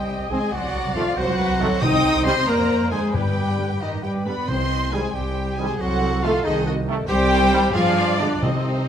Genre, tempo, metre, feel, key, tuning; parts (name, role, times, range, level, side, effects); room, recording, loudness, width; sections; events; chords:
classical, dramatic, fast romantic movement for symphony orchestra; 91 BPM (dotted quarters); 6/8; straight; C minor; A4 = 441 Hz
warm symphonic violin section; melody; 0.0-8.9 s; C5 to Eb6; -29 LUFS; left 1 dB
clear clarinet; second line; 0.0-8.9 s; C4 to Eb5; -30 LUFS; left 2 dB
mellow hollow flute section; second line; 0.0-8.9 s; C5 to Eb6; -28 LUFS; left 1 dB
rich studio violin section; second line; 0.0-8.9 s; Eb4 to G5; -31 LUFS; left 1 dB
dark studio viola section; accompaniment; 0.0-8.9 s; Gb4 to Eb5; -29 LUFS; right 1 dB
dark French horn section; sustained chords; 0.0-8.9 s; C3 to Eb4; -27 LUFS; left 2 dB
dark trumpet section; stabs; 0.0-8.9 s; C4 to Eb5; -30 LUFS; equal
warm symphonic cello section; bass; 0.0-8.9 s; C3 to Eb4; -28 LUFS; right 1 dB
rich symphonic double bass section; bass; 0.1-8.9 s; C2 to G2; -26 LUFS; right 2 dB
bright trombone section; sustained chords; 0.3-8.3 s; B2 to C4; -30 LUFS; right 3 dB
timpani; percussion; 1.8-5.1, 8.4-8.9 s; G2 to C3; -26 LUFS; left 1 dB
moderate scoring stage reverb, RT60 1.7 s; -18 LUFS; side -9 dB against mid
0.0-8.9 A section
0.0 Cm; 0.5 Cdim7(no3); 1.8 Cm; 2.5 Ddim/F; 3.1 G; 4.5 Cm; 5.8 Cdim7; 7.1 C5; 7.7 G7(no3)